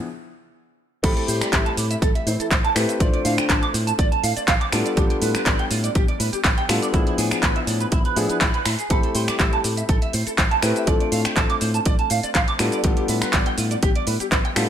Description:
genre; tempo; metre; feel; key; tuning
nu-disco, nu disco; 122 BPM; 4/4; swing 54% on 16ths; A minor; A4 = 440 Hz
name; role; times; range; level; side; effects
dark grand piano; accompaniment; 0.0-14.7 s; F3 to B5; -26 LUFS; left 2 dB; sidechain pumping, ping-pong delay
clean electric guitar; riff; 1.0-14.6 s; D4 to D6; -26 LUFS; right 4 dB; lush chorus, ping-pong delay
modern bright fingered electric bass; bass; 1.0-14.7 s; A1 to A2; -25 LUFS; equal; none
electronic kick drum; drums; 1.0-14.4 s; none; -21 LUFS; equal; overdrive
house drum kit; drums; 1.0-14.7 s; crash cymbal, finger snaps, handclaps, hi-hat, shaker; -24 LUFS; equal; overdrive
soft octave-layered synth lead; melody; 1.3-3.6, 9.2-11.3 s; D4 to A4; -30 LUFS; left 3 dB; chorus, ping-pong delay
room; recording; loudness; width
digital ambience; none; -18 LUFS; side -9 dB against mid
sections
0.0-1.0 A section; 1.0-14.7 B section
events
break 0.1-1.0; drop 1.0-14.7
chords
0.0 N.C.; 1.0 Am9; 3.0 Dm7/A; 4.7 G9/A; 6.9 E7b9/A; 8.9 Am9; 10.9 Dm7/A; 12.6 G9/A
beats
0.06 0.55 | 1.04 1.53 2.02 2.51 | 3.01 3.50 3.99 4.48 | 4.97 5.46 5.96 6.45 | 6.94 7.43 7.92 8.41 | 8.91 9.40 9.89 10.38 | 10.87 11.37 11.86 12.35 | 12.84 13.33 13.82 14.32

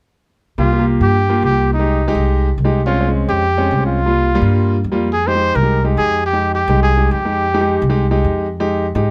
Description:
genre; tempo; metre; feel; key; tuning
Afro-Cuban jazz; 212 BPM; 4/4; straight; F minor; A4 = 440 Hz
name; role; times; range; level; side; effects
breathy trumpet; melody; 0.6-8.0 s; Eb4 to C5; -20 LUFS; equal; none
clear concert grand piano; accompaniment; 0.6-9.1 s; G3 to G4; -21 LUFS; equal; none
upright bass; bass; 0.6-9.1 s; C2 to Ab2; -19 LUFS; equal; none
room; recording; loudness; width
light reverb; close, detailed microphones; -16 LUFS; mono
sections
0.6-5.1 A section; 5.1-9.1 B section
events
none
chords
0.6 C7sus4; 1.7 Abmaj7/C; 2.9 Dbmaj7#11/C; 4.0 C7sus4; 5.1 Fm9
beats
| 0.58 0.87 1.15 1.44 | 1.72 2.00 2.29 2.57 | 2.86 3.14 3.42 3.71 | 3.99 4.28 4.56 4.84 | 5.13 5.41 5.70 5.98 | 6.26 6.54 6.83 7.11 | 7.40 7.68 7.96 8.25 | 8.53 8.81 9.10

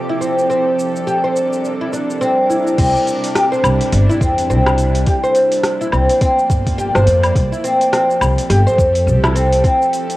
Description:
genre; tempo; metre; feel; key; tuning
organic downtempo; 105 BPM; 4/4; swing 59% on 16ths; C mixolydian; A4 = 440 Hz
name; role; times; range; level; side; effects
bowed-like drone; sustained chords; 0.0-10.2 s; C3 to D5; -23 LUFS; right 2 dB; built-in reverb, sidechain pumping, cassette tape
twinkling granular texture; texture; 0.0-2.8 s; D5; -33 LUFS; right 2 dB; built-in reverb, cassette tape
oud; arpeggios; 0.1-9.8 s; C4 to C5; -15 LUFS; equal; cassette tape, analog delay
afro-pop drum kit; drums; 0.2-10.2 s; crash cymbal, hi-hat, rim click, shaker, woodblock; -23 LUFS; equal; none
upright bass; bass; 2.8-9.6 s; G1 to F2; -15 LUFS; equal; sidechain pumping
electronic kick drum; drums; 2.8-9.8 s; none; -16 LUFS; equal; none
room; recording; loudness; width
light reverb; home recording on cassette; -12 LUFS; side -17 dB against mid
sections
0.0-2.8 A section; 2.8-10.2 B section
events
none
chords
0.5 Gm/C; 2.8 C; 5.1 Bb; 7.4 F/C; 9.6 Gm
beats
| 0.50 1.07 1.64 2.21 | 2.78 3.35 3.93 4.50 | 5.07 5.64 6.21 6.78 | 7.36 7.93 8.50 9.07 | 9.64

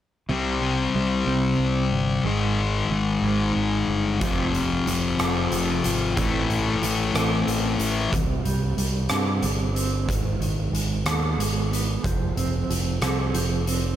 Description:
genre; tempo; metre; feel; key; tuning
quiet-loud alternative rock; 61 BPM (dotted quarters); 6/8; straight; unclear; A4 = 439 Hz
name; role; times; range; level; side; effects
mellow electric guitar; arpeggios; 0.3-14.0 s; Ab2 to F4; -29 LUFS; right 4 dB; tremolo
thick fuzz guitar; riff; 0.3-8.1 s; F2 to C4; -23 LUFS; left 4 dB; distortion
growling fingered electric bass; bass; 0.3-13.9 s; F1 to G2; -27 LUFS; right 1 dB; overdrive
oversized low-tuned drum kit; drums; 4.2-13.8 s; hi-hat, kick drum, rim click; -27 LUFS; equal; none
room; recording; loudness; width
light reverb; none; -21 LUFS; side -11 dB against mid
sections
0.3-8.1 A section; 8.1-14.0 B section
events
none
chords
0.3 C5; 2.3 Ab5; 4.2 Fm; 6.2 Am; 8.1 C5; 10.1 Abm; 12.0 F5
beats
| 0.30 1.28 | 2.26 3.24 | 4.22 5.20 | 6.17 7.15 | 8.13 9.11 | 10.09 11.06 | 12.04 13.02

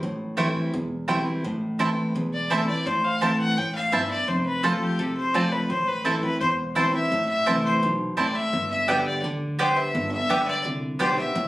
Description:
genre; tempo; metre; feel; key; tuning
bluegrass; 170 BPM; 4/4; straight; A minor; A4 = 440 Hz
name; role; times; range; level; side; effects
picked steel-string acoustic guitar; accompaniment; 0.0-11.5 s; E2 to G4; -27 LUFS; equal; none
upright bass; bass; 0.0-11.5 s; E1 to D2; -32 LUFS; equal; none
mandolin; stabs; 0.4-11.1 s; A3 to A5; -24 LUFS; right 2 dB; none
clear fiddle; second line; 2.3-11.5 s; G4 to A5; -25 LUFS; left 1 dB; none
room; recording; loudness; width
moderate studio reverb, RT60 0.6 s; recorded on a phone in the room, club reverb, compression; -22 LUFS; side -17 dB against mid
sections
0.0-1.4 A section; 1.4-11.5 B section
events
fiddle solo 1.4-11.5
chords
0.0 Am7; 4.3 F; 5.7 Am; 8.5 G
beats
| 0.03 0.38 0.74 1.09 | 1.45 1.80 2.16 2.51 | 2.87 3.22 3.58 3.93 | 4.29 4.64 4.99 5.35 | 5.70 6.06 6.41 6.76 | 7.12 7.47 7.82 8.18 | 8.53 8.88 9.24 9.59 | 9.94 10.29 10.65 11.00 | 11.35

